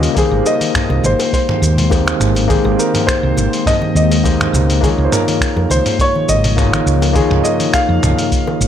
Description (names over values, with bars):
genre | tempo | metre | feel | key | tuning
sunset chillout | 103 BPM | 4/4 | straight | Ab major | A4 = 440 Hz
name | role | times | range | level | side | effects
overdriven tine electric piano | accompaniment | 0.0-8.7 s | Bb3 to Eb5 | -19 LUFS | left 1 dB | auto-pan, digital delay
ethereal airy pad | sustained chords | 0.0-8.7 s | Db3 to G5 | -23 LUFS | left 1 dB | ensemble chorus, built-in reverb, phaser
woody fretless electric bass | bass | 0.0-8.7 s | Ab1 to F2 | -16 LUFS | equal | tube saturation
dusty soul sampler-style drum kit | drums | 0.0-8.7 s | finger snaps, hi-hat, shaker, toms | -20 LUFS | equal | none
dark concert grand piano | melody | 0.2-8.7 s | Ab4 to F5 | -19 LUFS | left 2 dB | digital delay
electronic kick drum | drums | 0.2-8.4 s | none | -18 LUFS | equal | none
congas and bongos | percussion | 0.2-8.6 s | none | -24 LUFS | left 2 dB | none
room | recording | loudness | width
light reverb | none | -12 LUFS | side -9 dB against mid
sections
0.2-8.7 A section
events
none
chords
0.2 Abmaj7; 4.8 Db69